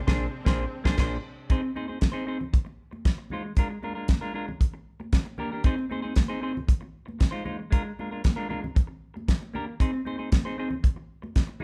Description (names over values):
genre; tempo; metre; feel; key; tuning
disco; 116 BPM; 4/4; straight; unclear; A4 = 440 Hz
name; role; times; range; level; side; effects
clear studio string section; sustained chords; 0.0-1.5 s; C3 to D4; -42 LUFS; equal; none
semi-hollow electric guitar; accompaniment; 0.1-11.6 s; Ab3 to C5; -34 LUFS; equal; none
overdriven fingered electric bass; bass; 0.1-1.2 s; Bb1; -35 LUFS; equal; none
damped 70s drum kit; drums; 0.1-11.5 s; crash cymbal, hi-hat, kick drum, snare drum; -24 LUFS; equal; none
congas; percussion; 1.5-11.6 s; none; -42 LUFS; equal; none
room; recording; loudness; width
light reverb; band playing live in one room; -28 LUFS; mono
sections
0.0-1.5 A section; 1.5-11.6 B section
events
band accent 0.0-1.5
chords
0.0 Bb9; 1.5 Ab/C; 2.5 Ab6; 3.6 Bb7; 4.6 Bb6; 5.6 Ab/C; 6.7 Ab6; 7.7 Bb7; 8.8 Bb6; 9.8 Ab/C; 10.8 Ab6 (rootless)